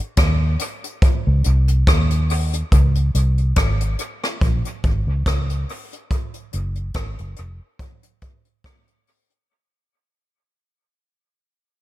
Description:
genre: lovers rock reggae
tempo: 71 BPM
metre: 4/4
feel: swing 55% on 16ths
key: Db major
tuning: A4 = 440 Hz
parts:
  - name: vintage muted fingered electric bass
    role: bass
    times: 0.2-7.6 s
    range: F1 to Eb2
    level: -18 LUFS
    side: equal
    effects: none
  - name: jazz brush drum kit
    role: drums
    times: 0.2-9.5 s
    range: hi-hat, kick drum, rim click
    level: -20 LUFS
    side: equal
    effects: dub echo
room: little or no reverb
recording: none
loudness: -17 LUFS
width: side -16 dB against mid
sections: 0.0-2.7 A section; 2.7-9.5 B section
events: fade-out 2.7-9.5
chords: none

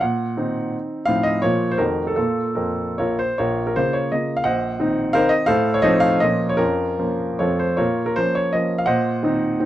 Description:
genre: classical, romantic triple-time dance for piano with dotted rhythms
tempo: 137-186 BPM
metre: 3/4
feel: rubato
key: Bb minor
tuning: A4 = 440 Hz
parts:
  - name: warm baby grand piano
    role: solo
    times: 0.0-9.7 s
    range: Bb1 to Gb5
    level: -18 LUFS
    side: equal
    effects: none
room: light reverb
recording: dark, warm production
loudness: -18 LUFS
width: side -13 dB against mid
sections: 0.0-3.4 A section; 3.4-9.7 B section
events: none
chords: 0.0 Cm7b5/Bb; 1.1 F7/A; 1.4 Bbm; 1.8 F7b9; 2.2 Bb5; 3.4 Bbm; 4.5 Cm7b5/Bb; 5.5 F7/A; 6.2 Bbm; 6.6 Bbm/F; 7.4 F; 7.8 Bbm; 8.9 Cm7b5/Bb

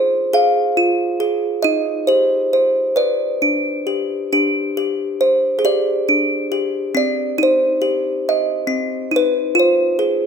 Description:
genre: children's music, lullaby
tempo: 46 BPM (dotted quarters)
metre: 6/8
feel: rubato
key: C harmonic minor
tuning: A4 = 441 Hz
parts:
  - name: music box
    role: solo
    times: 0.0-10.3 s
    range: C4 to F5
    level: -15 LUFS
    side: equal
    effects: none
room: moderate recital hall reverb, RT60 1.8 s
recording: none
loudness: -15 LUFS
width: side -6 dB against mid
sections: 0.0-10.3 A section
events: none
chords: 0.0 Fm; 1.7 Cm; 3.0 G; 4.3 Gsus4; 7.0 Cm; 9.6 Fm

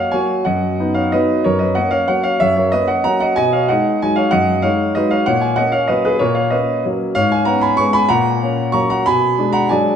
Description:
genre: classical, piano waltz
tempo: 174-206 BPM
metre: 3/4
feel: rubato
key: F# major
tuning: A4 = 444 Hz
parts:
  - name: warm concert grand piano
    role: solo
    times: 0.0-10.0 s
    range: F#2 to C#6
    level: -14 LUFS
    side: equal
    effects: none
room: wet recital hall reverb, RT60 1.7 s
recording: minimal, uncompressed stereo recording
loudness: -14 LUFS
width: side -8 dB against mid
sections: 0.0-10.0 A section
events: none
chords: 0.5 B/F#; 1.4 F#; 3.4 B6; 5.3 F#/A#; 7.2 C#7/G#; 8.1 F#/A#; 9.1 G#m7b5/B

